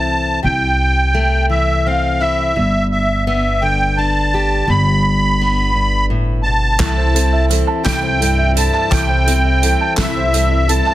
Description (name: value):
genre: indie folk with a building arrangement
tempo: 57 BPM (dotted quarters)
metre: 6/8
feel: straight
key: C major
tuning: A4 = 443 Hz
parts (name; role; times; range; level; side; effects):
- musette accordion; melody; 0.0-10.9 s; E5 to B5; -17 LUFS; right 1 dB; none
- fingerpicked plugged-in steel-string acoustic guitar; accompaniment; 0.0-10.9 s; G2 to G4; -22 LUFS; left 3 dB; none
- upright bass; bass; 0.0-10.8 s; G1 to C2; -17 LUFS; equal; none
- picked steel-string acoustic guitar; accompaniment; 6.8-10.9 s; C3 to A4; -25 LUFS; left 7 dB; none
- dark upright piano; arpeggios; 6.8-10.9 s; A4 to A5; -22 LUFS; right 7 dB; none
- loose indie drum kit; drums; 6.8-10.9 s; hi-hat, kick drum, snare drum; -20 LUFS; right 1 dB; none
- group handclap; percussion; 6.8-10.9 s; none; -25 LUFS; right 1 dB; none
room: small room ambience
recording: dense, heavily limited modern master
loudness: -13 LUFS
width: side -14 dB against mid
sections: 0.0-6.8 A section; 6.8-10.9 B section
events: none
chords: 0.0 C6; 2.6 G; 6.8 C6